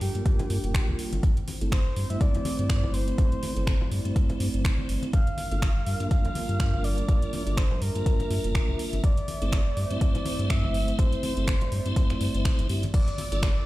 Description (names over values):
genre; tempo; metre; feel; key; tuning
deep house; 123 BPM; 4/4; swing 56% on 16ths; unclear; A4 = 435 Hz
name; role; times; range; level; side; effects
breathy flute-like synth lead; melody; 0.0-13.7 s; G4 to F5; -35 LUFS; equal; chorus, ping-pong delay
dark analog pad; sustained chords; 0.0-13.7 s; G3 to E5; -39 LUFS; right 1 dB; chorus, sidechain pumping
sub bass with octave; bass; 0.0-13.6 s; F1 to G2; -28 LUFS; equal; tube saturation, sidechain pumping
deep house drum kit; drums; 0.0-13.5 s; crash cymbal, finger snaps, hi-hat; -36 LUFS; equal; overdrive, studio reverb
tonewheel organ; stabs; 0.1-13.5 s; A3 to C5; -34 LUFS; right 2 dB; chorus vibrato, fast rotary speaker, low-pass filter, digital delay
electronic kick drum; drums; 0.3-13.5 s; none; -24 LUFS; equal; overdrive, studio reverb
congas; percussion; 0.4-13.3 s; none; -37 LUFS; left 2 dB; none
breakbeat sampler-style drum kit; drums; 12.9-13.7 s; hi-hat, snare drum, tambourine; -44 LUFS; equal; none
string machine, violins; texture; 12.9-13.7 s; D5 to E6; -43 LUFS; right 1 dB; ensemble chorus, sidechain pumping
room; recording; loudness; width
little or no reverb; played on a big sound system in a bare room, stone room reverb; -23 LUFS; side -17 dB against mid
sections
0.0-13.7 A section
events
filter sweep on tonewheel organ 0.0-13.7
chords
0.0 Gm7; 1.2 Am/G; 5.1 Gm7; 9.0 Am/G; 12.9 Gm7